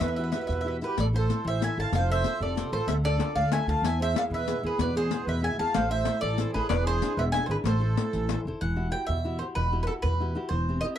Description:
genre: italian folk, Italian serenade.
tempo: 126 BPM (dotted quarters).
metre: 6/8.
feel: straight.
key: A harmonic minor.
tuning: A4 = 440 Hz.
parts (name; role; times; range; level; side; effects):
mandolin; melody; 0.0-11.0 s; A4 to A5; -30 LUFS; right 1 dB; none.
accordion; second line; 0.0-8.4 s; G4 to F5; -34 LUFS; right 7 dB; light tremolo tuning.
flamenco guitar; accompaniment; 0.0-11.0 s; B2 to C5; -33 LUFS; left 2 dB; none.
upright bass; bass; 0.0-10.8 s; E1 to E2; -28 LUFS; equal; none.
riq; percussion; 0.0-8.4 s; none; -33 LUFS; left 14 dB; none.
room: little or no reverb.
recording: dry, close 1970s-style studio recording.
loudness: -25 LUFS.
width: side -10 dB against mid.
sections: 1.0-8.6 A section; 8.6-11.0 B section.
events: none.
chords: 0.0 Emadd9; 1.0 Am; 1.9 F; 2.9 Dm; 3.8 E; 5.7 Am; 6.7 E7; 7.6 Am; 8.6 Emadd9.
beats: | 0.01 0.49 | 0.97 1.46 | 1.93 2.41 | 2.89 3.36 | 3.84 4.32 | 4.80 5.27 | 5.75 6.22 | 6.70 7.17 | 7.65 8.13 | 8.61 9.09 | 9.57 10.04 | 10.52.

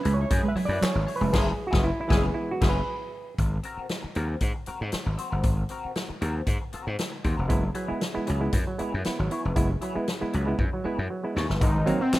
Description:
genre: funk.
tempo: 117 BPM.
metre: 4/4.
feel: straight.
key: unclear.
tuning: A4 = 440 Hz.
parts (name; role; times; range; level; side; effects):
electric guitar at the edge of break-up; accompaniment; 0.0-12.2 s; C4 to Db5; -36 LUFS; left 3 dB; wah.
auto-wah clav; stabs; 0.0-3.3, 7.5-12.1 s; Ab2 to Fb5; -29 LUFS; right 2 dB; none.
swinging big-band drum kit; drums; 0.0-12.2 s; crash cymbal, handclaps, hi-hat, kick drum, snare drum; -28 LUFS; equal; none.
mellow electric guitar; riff; 0.1-1.3 s; Gb3 to Ab3; -29 LUFS; right 3 dB; none.
gritty slap bass; bass; 0.1-12.2 s; F1 to Ab2; -27 LUFS; equal; overdrive.
mellow horn section; second line; 0.2-2.7 s; Ab3 to Db5; -36 LUFS; left 2 dB; none.
fat analog lead; melody; 11.6-12.2 s; C4 to Eb4; -25 LUFS; equal; chorus.
room: light reverb, small room ambience.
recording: rough home demo mix.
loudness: -24 LUFS.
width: side -17 dB against mid.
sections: 0.0-3.4 A section; 3.4-11.6 B section.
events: clav solo 0.0-3.4; band accent 1.3-3.4; drum fill 10.6-11.6.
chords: 0.0 Gb9sus4; 3.4 Ab9; 7.5 Gb9sus4; 11.6 Ab9.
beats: 0.31 0.82 | 1.33 1.85 2.36 2.87 | 3.39 3.90 4.41 4.93 | 5.44 5.96 6.47 6.99 | 7.50 8.02 8.54 9.05 | 9.56 10.08 10.59 11.10 | 11.62 12.13.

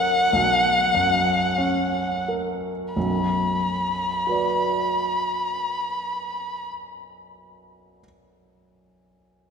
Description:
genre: classical, romantic duo for violin and grand piano.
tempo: 42-51 BPM.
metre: 4/4.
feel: rubato.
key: B minor.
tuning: A4 = 435 Hz.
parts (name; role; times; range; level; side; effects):
warm violin; melody; 0.0-6.7 s; F#5 to B5; -22 LUFS; left 1 dB; none.
warm baby grand piano; accompaniment; 0.0-9.5 s; B1 to D5; -26 LUFS; right 1 dB; none.
room: wet concert hall reverb, RT60 2.5 s.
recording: none.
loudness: -20 LUFS.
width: side -6 dB against mid.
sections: 0.0-3.0 A section; 3.0-8.2 B section.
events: slowing down 0.0-3.0.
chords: 0.0 F#/B; 3.0 Bm.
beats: 0.31 1.57 | 2.96 4.26 5.57 6.90.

